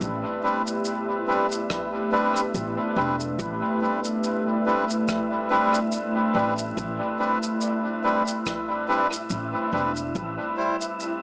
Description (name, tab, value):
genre	ambient dub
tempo	71 BPM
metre	4/4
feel	swing 57% on 16ths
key	A minor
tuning	A4 = 445 Hz
part	deep dark ambient pad	sustained chords	0.0-11.2 s	G3 to D5	-31 LUFS	equal	chorus, built-in reverb
part	upright bass	bass	0.0-10.4 s	E1 to A1	-34 LUFS	equal	tube saturation
part	electronic kick drum	drums	0.0-10.3 s	none	-46 LUFS	equal	none
part	shaker and rim click	drums	0.0-11.2 s	none	-39 LUFS	equal	dub echo
part	wind-like tuned noise texture	texture	0.0-11.2 s	E4 to E5	-36 LUFS	equal	built-in reverb
part	melodica	stabs	0.4-10.8 s	G3 to C5	-28 LUFS	equal	dub echo
room	light reverb, small room ambience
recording	echo-heavy mix, small speaker sound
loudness	-25 LUFS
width	mono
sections	0.0-11.2 A section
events	none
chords	0.0 Am11